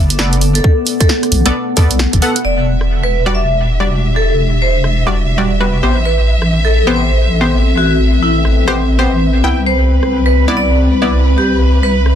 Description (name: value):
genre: UK garage, two-step garage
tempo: 133 BPM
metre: 4/4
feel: swing 61% on 16ths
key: E minor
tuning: A4 = 440 Hz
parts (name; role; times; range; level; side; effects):
- deep soft wobble bass; bass; 0.0-12.2 s; E1 to E2; -13 LUFS; equal; chorus, tube saturation
- deep dark ambient pad; texture; 0.0-12.2 s; B3 to G5; -19 LUFS; left 2 dB; chorus, built-in reverb, sidechain pumping
- punchy analog drum machine; drums; 0.1-12.1 s; hi-hat, rim click, snare drum; -18 LUFS; right 2 dB; none
- punchy chord stab; stabs; 0.2-11.2 s; G3 to G5; -19 LUFS; left 1 dB; chorus, dub echo
- vibraphone with medium hard mallets; melody; 0.6-11.9 s; E4 to E5; -19 LUFS; right 1 dB; dub echo
- electronic kick drum; drums; 0.6-2.2 s; none; -11 LUFS; equal; none
- rich chamber violin section; sustained chords; 2.4-12.2 s; B4 to E5; -22 LUFS; equal; sidechain pumping
room: light reverb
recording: dense, heavily limited modern master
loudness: -10 LUFS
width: side -9 dB against mid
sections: 0.0-2.4 A section; 2.4-12.2 B section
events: none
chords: 0.0 Bm7; 2.4 Em9; 5.8 Am9; 9.4 Cmaj9